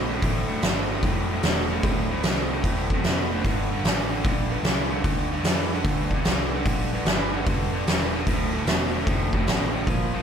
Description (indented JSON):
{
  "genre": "blues rock power trio and southern rock",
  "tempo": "149 BPM",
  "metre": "4/4",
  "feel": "swing 65% on 8ths",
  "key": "D minor",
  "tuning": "A4 = 442 Hz",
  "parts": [
    { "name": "raw garage guitar", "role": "riff", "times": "0.0-10.2 s", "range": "D2 to F3", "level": "-26 LUFS", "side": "equal", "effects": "overdrive" },
    { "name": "vintage muted picked electric bass", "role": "bass", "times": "0.0-10.2 s", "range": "D1 to F2", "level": "-30 LUFS", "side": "equal", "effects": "none" },
    { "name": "oversized low-tuned drum kit", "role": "drums", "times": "0.2-10.0 s", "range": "hi-hat, kick drum, snare drum", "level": "-24 LUFS", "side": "equal", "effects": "none" }
  ],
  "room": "moderate lush hall reverb, RT60 1.7 s, small room ambience",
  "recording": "none",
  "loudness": "-22 LUFS",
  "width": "side -8 dB against mid",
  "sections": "0.0-10.2 A section",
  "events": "none",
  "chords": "0.0 Dm; 3.4 Gm7; 8.3 Dm",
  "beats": "| 0.23 0.63 1.04 1.44 | 1.84 2.24 2.64 3.04 | 3.45 3.85 4.25 4.65 | 5.05 5.45 5.86 6.26 | 6.66 7.06 7.46 7.86 | 8.27 8.67 9.07 9.47 | 9.87"
}